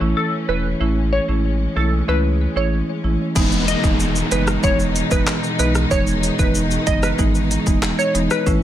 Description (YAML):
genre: dancehall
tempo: 94 BPM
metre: 4/4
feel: straight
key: E major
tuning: A4 = 440 Hz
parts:
  - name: marimba with medium mallets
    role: accompaniment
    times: 0.0-8.6 s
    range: E3 to E4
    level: -22 LUFS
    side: right 2 dB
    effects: low-pass filter
  - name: rich studio string section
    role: sustained chords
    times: 0.0-8.6 s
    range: B2 to D#4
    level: -27 LUFS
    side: left 3 dB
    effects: sidechain pumping, low-pass filter
  - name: round analog bass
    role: bass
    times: 0.0-8.6 s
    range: E1 to C#2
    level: -22 LUFS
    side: equal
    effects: none
  - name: glassy wavetable pluck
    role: melody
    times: 0.2-8.4 s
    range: A4 to D#5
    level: -23 LUFS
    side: equal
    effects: chorus, low-pass filter, ping-pong delay
  - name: pop drum kit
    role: drums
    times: 3.4-8.6 s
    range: crash cymbal, handclaps, hi-hat, kick drum, rim click, shaker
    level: -20 LUFS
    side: equal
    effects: none
  - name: downlifter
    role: sound effects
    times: 3.4-8.5 s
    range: none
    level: -28 LUFS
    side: left 1 dB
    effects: none
room: little or no reverb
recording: none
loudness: -16 LUFS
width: side -12 dB against mid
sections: 0.0-3.4 A section; 3.4-8.6 B section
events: none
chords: 0.0 A; 3.4 Emaj7